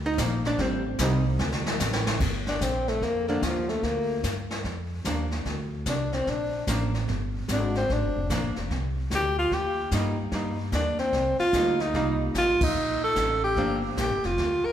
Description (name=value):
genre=jazz, small-group swing and bop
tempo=148 BPM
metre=4/4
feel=swing 65% on 8ths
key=G minor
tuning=A4 = 440 Hz
part: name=upright bass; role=bass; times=0.0-14.7 s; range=F1 to G2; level=-29 LUFS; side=equal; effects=none
part: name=archtop guitar, miked and amplified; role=accompaniment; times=0.1-13.8 s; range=F3 to Eb5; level=-31 LUFS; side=right 1 dB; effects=none
part: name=jazz brush drum kit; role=drums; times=0.2-14.7 s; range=brushed snare drum, crash cymbal, hi-hat, kick drum, ride cymbal, snare drum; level=-32 LUFS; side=equal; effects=none
part: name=breathy tenor saxophone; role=melody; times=2.5-14.7 s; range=D3 to Bb4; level=-26 LUFS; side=equal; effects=none
room=wet scoring stage reverb, RT60 1.9 s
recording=recorded in a church or concert hall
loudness=-24 LUFS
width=side -10 dB against mid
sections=0.0-2.2 A section; 2.2-14.7 B section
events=drum fill 1.4-2.2; band accent 12.6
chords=0.0 Gm7 (rootless); 0.6 Am7b5; 1.4 D5; 2.2 Gm7; 8.7 Cm7; 13.6 Gm7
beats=0.18 | 0.59 0.99 1.40 1.80 | 2.21 2.61 3.02 3.42 | 3.83 4.23 4.64 5.05 | 5.45 5.86 6.26 6.67 | 7.08 7.48 7.89 8.29 | 8.70 9.11 9.51 9.92 | 10.32 10.73 11.13 11.54 | 11.94 12.35 12.76 13.16 | 13.56 13.97 14.38